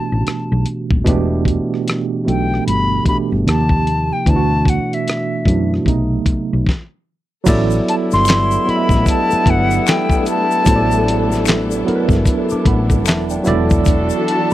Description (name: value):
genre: R&B, neo-soul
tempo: 75 BPM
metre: 4/4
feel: swing 61% on 16ths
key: unclear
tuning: A4 = 441 Hz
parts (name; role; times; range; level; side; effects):
- silver concert flute; melody; 0.0-14.5 s; E5 to C6; -19 LUFS; left 2 dB; slapback echo
- barky tine electric piano; accompaniment; 0.0-14.5 s; B2 to D6; -18 LUFS; right 4 dB; medium stereo tremolo
- woody fretless electric bass; bass; 0.1-14.1 s; D#1 to F#2; -18 LUFS; left 1 dB; none
- dusty soul sampler-style drum kit; drums; 0.3-14.5 s; crash cymbal, handclaps, hi-hat, kick drum, rim click, snare drum; -16 LUFS; left 1 dB; none
- warm studio string section; sustained chords; 7.5-14.5 s; E3 to A4; -25 LUFS; left 4 dB; none
- warm horn section; stabs; 7.5-14.5 s; G3 to A4; -24 LUFS; left 3 dB; none
- tube shaker and finger snaps; percussion; 7.5-14.5 s; none; -29 LUFS; left 14 dB; none
room: little or no reverb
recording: dry, close 1970s-style studio recording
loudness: -13 LUFS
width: side -14 dB against mid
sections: 0.0-7.5 A section; 7.5-14.5 B section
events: stop 6.7-7.5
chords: 0.0 A9sus4; 1.1 Em7; 3.5 D#add9; 4.3 D69; 5.9 B7b9; 7.5 A9sus4; 13.5 Em11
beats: 0.26 | 1.06 1.86 2.66 3.46 | 4.26 5.06 5.86 6.66 | 7.46 8.26 9.06 9.86 | 10.66 11.46 12.26 13.06 | 13.86